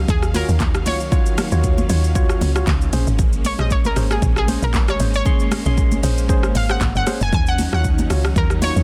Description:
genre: amapiano.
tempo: 116 BPM.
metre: 4/4.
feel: swing 55% on 16ths.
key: Eb minor.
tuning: A4 = 441 Hz.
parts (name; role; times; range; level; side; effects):
analog pluck; melody; 0.0-8.8 s; Ab4 to Ab5; -28 LUFS; equal; chorus, tape echo.
string machine, violas; sustained chords; 0.0-8.8 s; Eb3 to F5; -31 LUFS; equal; ensemble chorus, sidechain pumping.
woody log drum bass; bass; 0.0-8.8 s; F1 to Eb2; -22 LUFS; equal; none.
afro-pop drum kit; drums; 0.1-8.8 s; handclaps, hi-hat, kick drum, rim click, shaker; -22 LUFS; equal; none.
congas; percussion; 0.1-8.8 s; none; -30 LUFS; equal; none.
percussive organ stab; stabs; 0.3-8.8 s; Db4 to C6; -30 LUFS; equal; chorus, tape echo.
room: little or no reverb.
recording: dense, heavily limited modern master.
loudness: -18 LUFS.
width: mono.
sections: 0.0-8.8 A section.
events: none.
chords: 0.0 Ebm9; 2.9 Bbm9; 7.3 Ebm9.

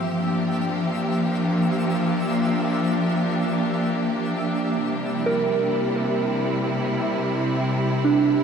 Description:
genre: ambient.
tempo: free time.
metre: none.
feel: none.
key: unclear.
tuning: A4 = 440 Hz.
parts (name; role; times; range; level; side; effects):
bright studio string section; sustained chords; 0.0-8.4 s; C3 to G4; -21 LUFS; equal; none.
twinkling granular texture; texture; 0.0-4.8 s; E5 to E6; -35 LUFS; right 1 dB; built-in reverb.
soft synth bell; arpeggios; 5.3-8.4 s; D4 to Bb4; -24 LUFS; right 5 dB; chorus, tape echo.
room: wet cathedral reverb, RT60 6.0 s.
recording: dark, warm production.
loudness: -20 LUFS.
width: side -6 dB against mid.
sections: 0.0-4.8 A section; 4.8-8.4 B section.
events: none.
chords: 0.0 Gm7; 4.8 C.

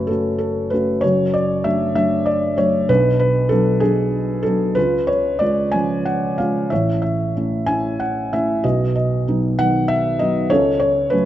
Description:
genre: classical, lyrical solo piano.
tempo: 64 BPM (dotted quarters).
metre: 6/8.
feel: rubato.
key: unclear.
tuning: A4 = 443 Hz.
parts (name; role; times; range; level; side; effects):
felt-muted upright piano; solo; 0.0-11.3 s; F#1 to G#5; -16 LUFS; equal; none.
room: moderate recital hall reverb, RT60 1.6 s.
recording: nothing above 7.8 kHz.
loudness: -16 LUFS.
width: side -12 dB against mid.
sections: 0.0-11.3 A section.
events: none.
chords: 0.0 F#m; 1.0 D/F#; 2.9 Bm; 4.8 C#; 6.7 A; 8.6 B; 10.5 F#m/C#.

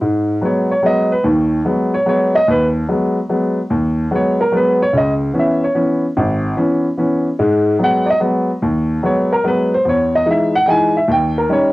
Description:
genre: jazz.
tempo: 146 BPM.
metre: 3/4.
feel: swing 66% on 8ths.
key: G# minor.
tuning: A4 = 444 Hz.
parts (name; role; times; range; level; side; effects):
warm upright piano; solo; 0.0-11.7 s; G#1 to G#5; -13 LUFS; equal; cassette tape.
room: moderate studio reverb, RT60 0.6 s.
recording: home recording on cassette.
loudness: -13 LUFS.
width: side -18 dB against mid.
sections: 0.0-11.7 A section.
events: none.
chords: 0.0 G#m7; 4.9 C#m7; 7.4 G#m7; 9.8 Emaj7; 11.1 D#7.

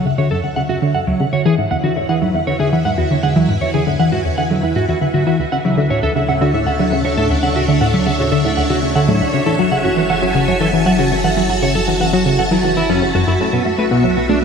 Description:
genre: ambient, sequencer-driven space music.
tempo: 118 BPM.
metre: 4/4.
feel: straight.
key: F# minor.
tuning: A4 = 438 Hz.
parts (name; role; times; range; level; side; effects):
string machine, full ensemble; sustained chords; 0.0-14.4 s; D4 to A5; -21 LUFS; equal; ensemble chorus.
electric guitar at the edge of break-up; arpeggios; 0.0-14.4 s; B2 to F#5; -19 LUFS; right 2 dB; auto-pan, tape echo.
warm sub bass; bass; 0.0-14.4 s; F#1 to E2; -27 LUFS; equal; none.
pulsing gated texture; texture; 0.0-13.5 s; E5; -26 LUFS; left 1 dB; chorus, built-in reverb.
tight sequenced synth; riff; 0.1-14.4 s; D2 to B3; -17 LUFS; left 1 dB; chorus, tape echo.
room: moderate plate reverb, RT60 3.9 s.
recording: none.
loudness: -13 LUFS.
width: side -6 dB against mid.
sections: 0.0-13.5 A section.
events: fade-in on string machine 0.0-13.5; fade-in on sub bass 0.0-13.5.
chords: 0.0 Dmaj7; 1.3 E7; 5.4 Dmaj7; 9.5 F#m7; 13.5 Bm.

